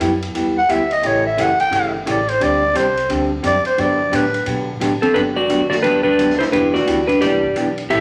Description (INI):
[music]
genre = country, western swing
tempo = 175 BPM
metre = 4/4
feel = swing 63% on 8ths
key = G major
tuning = A4 = 439 Hz
[part]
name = vintage hollow-body jazz guitar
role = accompaniment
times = 0.0-8.0 s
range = C#3 to A4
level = -23 LUFS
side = equal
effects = none
[part]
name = upright bass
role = bass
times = 0.0-8.0 s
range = E1 to B2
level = -32 LUFS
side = equal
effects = none
[part]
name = swinging big-band drum kit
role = drums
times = 0.0-8.0 s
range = hi-hat, kick drum, ride cymbal, snare drum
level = -33 LUFS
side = equal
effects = none
[part]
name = growling clarinet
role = second line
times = 0.6-4.5 s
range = B4 to G5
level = -19 LUFS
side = equal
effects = none
[part]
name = clean lap steel guitar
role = melody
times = 5.0-8.0 s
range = C4 to E5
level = -18 LUFS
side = equal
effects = none
[sound]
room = wet large studio reverb, RT60 0.8 s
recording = vinyl crackle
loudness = -17 LUFS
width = mono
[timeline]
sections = 0.0-5.2 A section; 5.2-8.0 B section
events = clarinet solo 0.0-5.2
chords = 0.0 G6; 1.0 A7; 2.4 D7sus4; 3.8 Gmaj7; 6.5 Em7